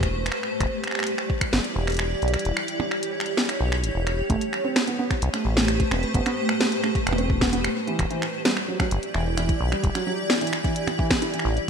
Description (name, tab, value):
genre	IDM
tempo	130 BPM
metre	4/4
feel	straight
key	unclear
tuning	A4 = 439 Hz
part	granular cloud pad	sustained chords	0.0-11.6 s	A3 to D5	-27 LUFS	equal	built-in reverb, analog chorus
part	deep acid bass	bass	0.0-11.6 s	E1 to C2	-25 LUFS	equal	none
part	electronic kick drum	drums	0.0-1.5, 4.3-11.2 s	none	-26 LUFS	equal	none
part	glitchy drum kit	drums	0.0-11.7 s	finger snaps, hi-hat, percussion blips, snare drum	-26 LUFS	equal	gated reverb, ping-pong delay
part	felt-muted upright piano	arpeggios	4.3-11.4 s	E3 to E4	-29 LUFS	right 3 dB	vintage 12-bit sampler grit, ping-pong delay
room	moderate lush hall reverb, RT60 1.8 s, digital ambience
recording	bright 1980s-style digital production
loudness	-22 LUFS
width	side -6 dB against mid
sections	0.0-4.3 A section; 4.3-11.7 B section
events	kick drops out 2.5-4.3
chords	0.4 Em7; 4.3 Am9; 7.8 Em7